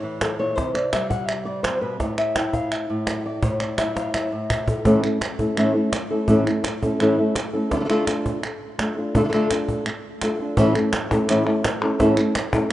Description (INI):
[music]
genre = flamenco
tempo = 168 BPM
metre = 4/4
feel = straight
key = unclear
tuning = A4 = 435 Hz
[part]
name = flamenco guitar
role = melody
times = 0.0-12.7 s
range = A2 to G5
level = -20 LUFS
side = equal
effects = none
[part]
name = cajon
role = percussion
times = 0.2-12.7 s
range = none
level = -27 LUFS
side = equal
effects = none
[part]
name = palmas hand claps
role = percussion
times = 0.2-12.7 s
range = none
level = -29 LUFS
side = right 2 dB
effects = none
[sound]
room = moderate lush hall reverb, RT60 2.5 s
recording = rough home demo mix, nothing above 10.8 kHz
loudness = -19 LUFS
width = side -14 dB against mid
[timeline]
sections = 0.0-4.9 A section; 4.9-10.6 B section; 10.6-12.7 B section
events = nylon-string guitar solo 0.0-4.9; drum fill 4.0-4.9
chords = 0.0 A5; 0.6 C5; 2.0 A5; 4.9 A; 7.7 Dm; 10.6 A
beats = 0.21 | 0.57 0.93 1.29 1.64 | 2.00 2.36 2.72 3.07 | 3.43 3.79 4.14 4.50 | 4.86 5.21 5.57 5.93 | 6.29 6.64 7.00 7.36 | 7.72 8.07 8.43 8.79 | 9.15 9.50 9.86 10.22 | 10.57 10.93 11.29 11.64 | 12.00 12.35 12.71